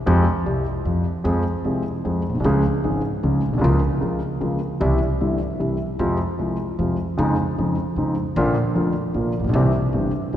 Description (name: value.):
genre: tango.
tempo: 152 BPM.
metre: 3/4.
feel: rubato.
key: F minor.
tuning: A4 = 440 Hz.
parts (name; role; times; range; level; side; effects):
warm concert grand piano; accompaniment; 0.1-10.4 s; F1 to Ab4; -20 LUFS; equal; none.
upright bass; bass; 0.1-10.4 s; F1 to F2; -26 LUFS; right 1 dB; none.
room: wet church reverb, RT60 2.7 s.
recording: recorded in a church or concert hall, nothing above 10.9 kHz.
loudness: -19 LUFS.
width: side -11 dB against mid.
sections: 0.0-1.3 A section; 1.3-10.4 B section.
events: none.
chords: 0.1 Fmadd9; 1.3 Fm; 2.4 Db; 3.6 Bbm/Db; 4.8 C; 6.0 Fm; 7.2 Dbadd9/F; 8.4 Bb; 9.5 C.